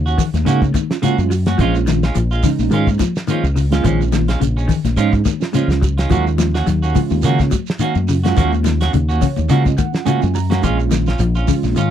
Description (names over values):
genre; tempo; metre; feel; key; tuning
afrobeat; 106 BPM; 4/4; swing 55% on 16ths; Eb minor; A4 = 438 Hz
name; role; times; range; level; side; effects
semi-hollow electric guitar; arpeggios; 0.0-11.9 s; Db3 to Gb3; -21 LUFS; left 6 dB; wide subtle chorus
fingered electric bass; bass; 0.0-11.9 s; Bb1 to Db3; -17 LUFS; equal; none
clean electric guitar; stabs; 0.1-11.9 s; Eb3 to Gb4; -22 LUFS; right 6 dB; none
shekere; percussion; 0.1-11.9 s; none; -28 LUFS; right 6 dB; none
warm soul drum kit; drums; 0.2-11.9 s; hi-hat, kick drum, snare drum; -20 LUFS; equal; none
congas; percussion; 0.2-11.8 s; none; -24 LUFS; left 15 dB; none
mellow reed electric piano; accompaniment; 0.5-11.9 s; Ab3 to Bb5; -22 LUFS; right 16 dB; fast tremolo
room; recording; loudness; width
little or no reverb; none; -14 LUFS; side -10 dB against mid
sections
0.0-11.9 A section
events
reed electric piano fill 8.9-10.6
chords
0.0 Ebm7; 1.6 Bbm7; 6.1 Ebm7; 10.6 Bbm7